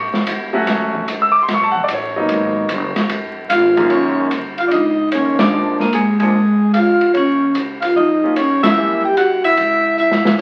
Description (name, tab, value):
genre	jazz, small-group swing and bop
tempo	148 BPM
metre	4/4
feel	swing 67% on 8ths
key	F# major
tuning	A4 = 440 Hz
part	warm concert grand piano	accompaniment	0.0-9.0 s	F#2 to E6	-21 LUFS	equal	none
part	upright bass	bass	0.0-10.4 s	E#1 to A2	-34 LUFS	equal	none
part	open jazz drum kit	drums	0.1-10.4 s	crash cymbal, hi-hat, kick drum, ride cymbal, snare drum	-24 LUFS	equal	none
part	vibraphone with medium hard mallets	melody	3.5-10.4 s	G#3 to G4	-17 LUFS	equal	none
part	breathy alto saxophone	second line	3.5-10.4 s	G#4 to G5	-21 LUFS	equal	none
room	moderate large studio reverb, RT60 0.9 s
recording	very old 78 rpm record, vinyl crackle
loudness	-16 LUFS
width	mono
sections	0.0-3.9 A section; 3.9-10.4 B section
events	band accent 5.3, 8.6; drum fill 10.0-10.4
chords	0.0 A; 0.7 Dmaj7; 2.3 G#m7; 3.1 C#; 3.9 F#69; 5.5 A#7; 7.1 D#m7; 8.8 F#7b9